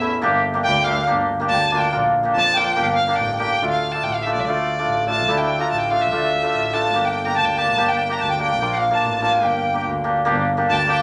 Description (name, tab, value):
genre	klezmer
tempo	143 BPM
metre	2/4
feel	straight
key	G minor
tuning	A4 = 440 Hz
part	clear violin	melody	0.0-11.0 s	D5 to Bb5	-24 LUFS	equal	none
part	hammered dulcimer	accompaniment	0.0-11.0 s	A3 to G4	-22 LUFS	equal	none
part	rich double bass	bass	0.0-10.9 s	G1 to F2	-30 LUFS	equal	none
part	accordion	second line	0.6-3.5, 7.0-11.0 s	E5 to A5	-27 LUFS	equal	none
room	wet studio reverb, RT60 0.7 s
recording	none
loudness	-19 LUFS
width	mono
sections	0.0-3.6 A section; 3.6-10.3 B section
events	speeding up 0.0-11.0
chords	0.2 Gm; 1.9 Bb; 2.8 Gm; 3.6 Dm; 7.0 Gm; 8.6 Bb; 9.4 Gm